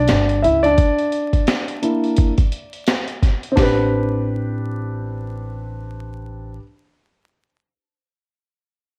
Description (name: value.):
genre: hip hop, jazz-hop.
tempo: 86 BPM.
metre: 4/4.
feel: swing 59% on 16ths.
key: A minor.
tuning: A4 = 439 Hz.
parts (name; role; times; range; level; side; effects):
dark concert grand piano; accompaniment; 0.0-6.6 s; Bb3 to E5; -22 LUFS; equal; none.
upright bass; bass; 0.0-6.6 s; G1 to C#2; -26 LUFS; equal; none.
boom bap sampler-style drum kit; drums; 0.1-3.8 s; hi-hat, kick drum, snare drum; -21 LUFS; equal; vintage 12-bit sampler grit, cassette tape.
room: small room ambience.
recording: home recording on cassette, vinyl crackle.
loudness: -19 LUFS.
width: mono.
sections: 0.0-3.6 A section; 3.6-6.4 B section.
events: grand piano solo 0.0-3.6; break 0.8-3.6.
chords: 0.0 G5; 0.8 Bb; 3.6 Am11.